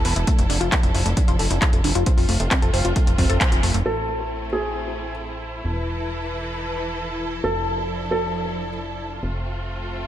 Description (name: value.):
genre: uplifting trance.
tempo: 134 BPM.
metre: 4/4.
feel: straight.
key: A minor.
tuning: A4 = 444 Hz.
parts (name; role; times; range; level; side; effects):
rich symphonic string section; sustained chords; 0.0-10.1 s; E3 to B4; -29 LUFS; right 1 dB; sidechain pumping.
tight sequenced synth; arpeggios; 0.0-3.8 s; A3 to C5; -27 LUFS; left 2 dB; chorus, sidechain pumping, ping-pong delay.
plucky analog bass; bass; 0.0-10.1 s; E1 to A1; -25 LUFS; equal; sidechain pumping.
techno drum kit; drums; 0.0-3.9 s; crash cymbal, handclaps, hi-hat; -25 LUFS; left 1 dB; low-pass filter on hats, low-pass filter on snare, low-pass filter on cymbals, low-pass filter on room.
electronic kick drum; drums; 0.3-3.5 s; none; -20 LUFS; equal; none.
felt-muted upright piano; second line; 3.9-8.7 s; G#4 to A4; -25 LUFS; equal; ping-pong delay.
room: light reverb.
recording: none.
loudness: -20 LUFS.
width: side -12 dB against mid.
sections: 0.0-3.9 A section; 3.9-10.1 B section.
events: filter sweep on synth arpeggio sound 0.0-3.9; band accent 3.4.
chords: 0.3 Dmadd9/F; 2.1 F; 3.9 Am; 5.6 Esus4; 7.4 Dmadd9/F; 9.2 F.